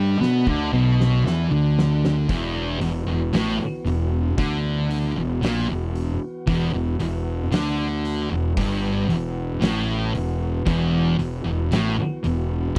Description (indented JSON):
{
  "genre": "stoner and doom metal",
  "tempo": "57 BPM",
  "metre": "4/4",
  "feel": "straight",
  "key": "E minor",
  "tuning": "A4 = 442 Hz",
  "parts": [
    { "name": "metallic inharmonic drone", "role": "sustained chords", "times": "0.0-12.8 s", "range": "D3 to F#4", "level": "-37 LUFS", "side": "equal", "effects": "chorus, built-in reverb" },
    { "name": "thick fuzz guitar", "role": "riff", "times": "0.0-12.8 s", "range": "E2 to B3", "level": "-27 LUFS", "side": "equal", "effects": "distortion" },
    { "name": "thick fuzz guitar", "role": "riff", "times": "0.0-12.8 s", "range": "E2 to B3", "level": "-29 LUFS", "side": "equal", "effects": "distortion" },
    { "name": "fuzz fingered electric bass", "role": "bass", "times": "0.0-12.8 s", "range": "E1 to B2", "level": "-28 LUFS", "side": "equal", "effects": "overdrive" },
    { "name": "oversized low-tuned drum kit", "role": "drums", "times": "0.2-12.8 s", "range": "hi-hat, kick drum, snare drum", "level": "-29 LUFS", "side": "equal", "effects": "none" }
  ],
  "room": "little or no reverb",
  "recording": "dry, close 1970s-style studio recording",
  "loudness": "-23 LUFS",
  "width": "mono",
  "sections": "0.0-2.3 A section; 2.3-12.8 B section",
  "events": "drum fill 0.2-2.3",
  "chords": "0.0 D5; 2.3 Em",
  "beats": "0.21 1.25 | 2.29 3.34 4.38 5.43 | 6.47 7.52 8.57 9.61 | 10.66 11.71 12.76"
}